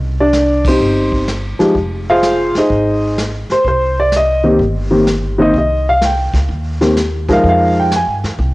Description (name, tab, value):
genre	jazz piano trio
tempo	126 BPM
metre	4/4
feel	swing 68% on 8ths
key	C minor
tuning	A4 = 439 Hz
part	upright bass	bass	0.0-8.5 s	F1 to G2	-18 LUFS	equal	none
part	warm baby grand piano	melody	0.2-8.1 s	Eb3 to Ab5	-13 LUFS	equal	none
part	vintage brush drum kit	drums	0.3-8.5 s	brushed snare drum, hi-hat, kick drum, ride cymbal, snare drum	-23 LUFS	equal	cassette tape
room	light reverb, small room ambience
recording	home recording on cassette, nothing above 10.4 kHz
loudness	-11 LUFS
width	side -20 dB against mid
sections	0.0-8.5 A section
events	band accent 0.6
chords	0.0 Cm; 1.8 Fm7; 3.6 Cm; 7.4 Fm9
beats	0.33 0.80 1.28 | 1.75 2.23 2.70 3.17 | 3.65 4.12 4.60 5.07 | 5.55 6.02 6.49 6.97 | 7.44 7.92 8.39